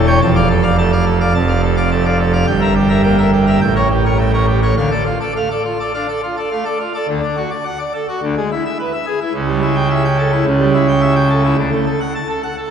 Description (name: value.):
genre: classical, organ toccata.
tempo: 107 BPM.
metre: 4/4.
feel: straight.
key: D minor, D major from 7.1 s.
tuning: A4 = 440 Hz.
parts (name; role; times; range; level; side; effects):
pipe organ, full organ; solo; 0.0-12.7 s; E1 to A5; -13 LUFS; right 1 dB; none.
room: wet church reverb, RT60 3.1 s.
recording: heard from further back in the room.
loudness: -13 LUFS.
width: side -7 dB against mid.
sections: 0.0-7.1 A section; 7.1-12.7 B section.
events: none.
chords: 0.2 Dm/F; 2.5 Edim/G; 3.6 A7b9; 4.8 Dm; 7.1 D; 8.2 E7/D; 9.3 A7/C#; 11.6 D.